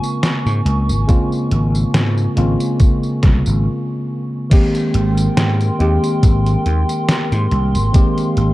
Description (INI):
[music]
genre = vaporwave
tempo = 70 BPM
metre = 4/4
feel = swing 55% on 16ths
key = Ab major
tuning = A4 = 442 Hz
[part]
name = tine electric piano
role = accompaniment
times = 0.0-8.5 s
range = Db3 to G4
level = -19 LUFS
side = equal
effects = wide subtle chorus, analog delay
[part]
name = warbly tape-like pad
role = sustained chords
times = 0.0-8.5 s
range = Bb4 to Db6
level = -26 LUFS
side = right 1 dB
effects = chorus, built-in reverb
[part]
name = detuned 8-bit digital drum machine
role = drums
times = 0.0-8.5 s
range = crash cymbal, hi-hat, snare drum, tambourine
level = -22 LUFS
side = equal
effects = none
[part]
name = vintage slap bass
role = bass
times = 0.5-8.5 s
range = Ab1 to Ab2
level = -16 LUFS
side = equal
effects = none
[part]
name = electronic kick drum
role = drums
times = 1.1-8.1 s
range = none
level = -12 LUFS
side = equal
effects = none
[sound]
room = little or no reverb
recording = dark, warm production, cassette tape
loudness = -14 LUFS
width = side -17 dB against mid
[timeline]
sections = 0.0-4.5 A section; 4.5-8.5 B section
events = stop 3.7-4.5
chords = 0.0 Bbm7/Ab; 4.5 Abmaj9